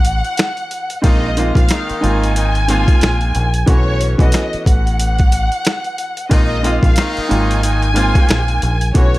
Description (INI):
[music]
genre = hip hop, boom-bap hip-hop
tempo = 91 BPM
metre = 4/4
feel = swing 60% on 16ths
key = Bb minor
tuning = A4 = 440 Hz
[part]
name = warm studio violin section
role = melody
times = 0.0-9.2 s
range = C#5 to Ab5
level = -22 LUFS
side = equal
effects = slapback echo
[part]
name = clear upright piano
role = accompaniment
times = 0.0-9.2 s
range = Eb3 to F#4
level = -21 LUFS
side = equal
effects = none
[part]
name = deep dub fingered electric bass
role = bass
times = 0.0-9.2 s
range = Ab1 to B1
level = -17 LUFS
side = equal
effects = none
[part]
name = boom bap sampler-style drum kit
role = drums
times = 0.0-9.2 s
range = hi-hat, kick drum, snare drum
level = -14 LUFS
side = equal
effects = none
[part]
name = warm horn section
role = stabs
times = 1.0-8.5 s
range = Eb3 to F4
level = -23 LUFS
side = equal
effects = slapback echo
[sound]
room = little or no reverb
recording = none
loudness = -13 LUFS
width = side -18 dB against mid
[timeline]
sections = 0.0-9.2 A section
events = none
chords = 0.0 B9sus4; 1.0 Bb9sus4; 3.7 B9sus4; 6.3 Bb9sus4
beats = 0.38 | 1.04 1.70 2.36 3.02 | 3.68 4.34 5.00 5.66 | 6.32 6.97 7.63 8.29 | 8.95